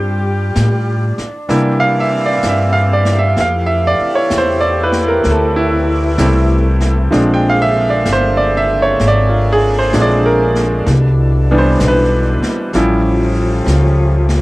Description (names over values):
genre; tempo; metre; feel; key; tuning
jazz ballad; 64 BPM; 4/4; swing 66% on 8ths; C major; A4 = 443 Hz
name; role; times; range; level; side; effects
bright upright piano; accompaniment; 0.0-14.4 s; E3 to G5; -14 LUFS; right 1 dB; cassette tape
mellow saxophone section; sustained chords; 0.0-14.4 s; B2 to Ab4; -21 LUFS; left 1 dB; cassette tape
upright bass; bass; 0.0-14.4 s; G1 to C3; -15 LUFS; equal; none
jazz brush drum kit; drums; 0.6-14.4 s; brushed snare drum, hi-hat, snare drum; -25 LUFS; equal; none
room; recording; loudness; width
light reverb; home recording on cassette; -11 LUFS; side -19 dB against mid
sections
0.0-14.4 A section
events
none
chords
0.0 Gsus2; 1.5 C7; 3.4 Fmaj9; 7.1 Bb9; 10.9 Cmaj9; 12.7 A7b13